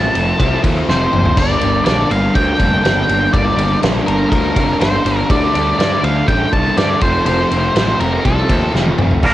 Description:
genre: quiet-loud alternative rock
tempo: 122 BPM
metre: 4/4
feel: straight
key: G minor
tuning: A4 = 439 Hz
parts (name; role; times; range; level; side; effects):
- octave-fuzz lead guitar; melody; 0.0-8.7 s; A4 to A5; -18 LUFS; equal; distortion, cassette tape, analog delay
- overdriven semi-hollow guitar; riff; 0.0-9.2 s; F2 to D4; -18 LUFS; equal; none
- fuzz picked electric bass; bass; 0.0-9.3 s; F1 to G2; -19 LUFS; equal; overdrive
- loose indie drum kit; drums; 0.1-9.3 s; crash cymbal, hi-hat, kick drum, ride cymbal, snare drum, splash cymbal, toms; -18 LUFS; equal; cassette tape
- twangy electric guitar; arpeggios; 9.2-9.3 s; G2 to Bb4; -12 LUFS; right 2 dB; tremolo
room: little or no reverb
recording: home recording on cassette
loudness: -12 LUFS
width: side -14 dB against mid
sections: 0.0-9.2 A section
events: drum fill 0.9-1.4, 8.7-9.2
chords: 0.0 F; 1.4 Gm; 5.3 Dsus4; 7.0 F

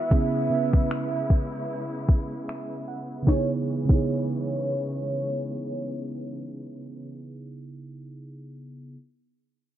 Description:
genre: contemporary R&B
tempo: 76 BPM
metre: 4/4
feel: swing 58% on 16ths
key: C# minor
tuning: A4 = 438 Hz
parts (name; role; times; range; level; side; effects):
- warm velvety synth lead; melody; 0.0-7.2 s; C#5 to E5; -31 LUFS; right 1 dB; chorus, tremolo, tape echo
- mellow FM electric piano; accompaniment; 0.0-8.9 s; C#3 to F#5; -30 LUFS; right 2 dB; chorus
- warm studio string section; sustained chords; 0.0-7.2 s; C#3 to E4; -38 LUFS; left 2 dB; none
- smooth R&B drum kit; drums; 0.1-4.1 s; crash cymbal, finger snaps, kick drum, snare drum; -21 LUFS; equal; overdrive
room: little or no reverb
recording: low-pass filter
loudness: -24 LUFS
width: side -12 dB against mid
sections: 0.0-3.3 A section; 3.3-6.4 B section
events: filter sweep 0.0-3.3; FM electric piano fill 2.1-3.3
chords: 0.1 C#m7

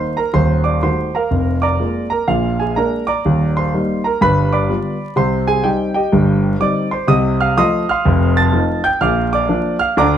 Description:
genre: jazz, stride piano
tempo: 125 BPM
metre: 4/4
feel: swing 65% on 8ths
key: Bb major from 7.1 s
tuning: A4 = 439 Hz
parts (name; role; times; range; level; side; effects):
- warm concert grand piano; solo; 0.0-10.2 s; Eb1 to A6; -14 LUFS; right 1 dB; none
room: moderate studio reverb, RT60 0.8 s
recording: dark, warm production, vinyl crackle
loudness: -14 LUFS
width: side -9 dB against mid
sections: 0.0-10.2 A section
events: none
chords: 0.3 Ebdim7; 1.3 Bb7/F; 2.3 Bb7; 3.2 Eb; 4.2 G7; 5.2 Cm; 7.1 F7/C; 8.1 F7; 9.0 Bb

